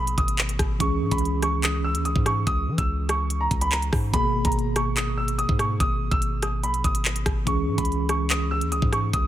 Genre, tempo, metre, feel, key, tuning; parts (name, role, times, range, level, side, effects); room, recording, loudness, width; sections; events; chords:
hip hop, drill; 144 BPM; 4/4; half-time; A4 = 442 Hz
dark grand piano; melody; 0.0-9.3 s; A#5 to E6; -27 LUFS; right 2 dB; digital delay
mellow tine electric piano; accompaniment; 0.0-9.3 s; B2 to G#4; -29 LUFS; right 1 dB; medium stereo tremolo
long sustained 808-style bass; bass; 0.0-9.3 s; G#1 to E3; -27 LUFS; equal
drill drum kit; drums; 0.1-9.2 s; handclaps, hi-hat, kick drum, rim click; -26 LUFS; equal
digital ambience; -21 LUFS; side -12 dB against mid
0.0-9.3 A section
0.0 G#madd9; 0.8 C#m; 4.1 G#madd9; 7.5 C#m